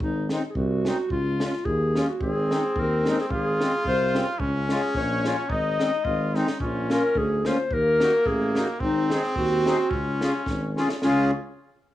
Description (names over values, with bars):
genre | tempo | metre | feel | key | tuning
alpine folk, alpine dance band | 109 BPM | 2/4 | swing 55% on 8ths | Db major | A4 = 440 Hz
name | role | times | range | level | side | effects
mellow clarinet | melody | 0.0-11.3 s | Db4 to Eb5 | -25 LUFS | left 1 dB | none
mellow tuba | bass | 0.0-11.3 s | Ab1 to Eb2 | -28 LUFS | equal | none
compact cocktail drum kit | drums | 0.0-11.2 s | kick drum, snare drum | -31 LUFS | equal | cassette tape
accordion | accompaniment | 0.3-11.3 s | Ab3 to Ab4 | -26 LUFS | left 1 dB | cassette tape
clear trumpet | second line | 2.2-11.3 s | Bb3 to F4 | -30 LUFS | right 1 dB | cassette tape
room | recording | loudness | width
light reverb, small room ambience | home recording on cassette, studio ambience | -22 LUFS | side -14 dB against mid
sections
0.0-11.0 A section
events
drum fill 6.3, 10.5-11.0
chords
0.0 Ab; 1.1 Db; 2.2 Ab; 3.3 Fm/Ab; 4.4 Db; 5.5 Ab; 6.6 Bbm; 7.7 Ebm; 8.8 Ab; 9.9 Db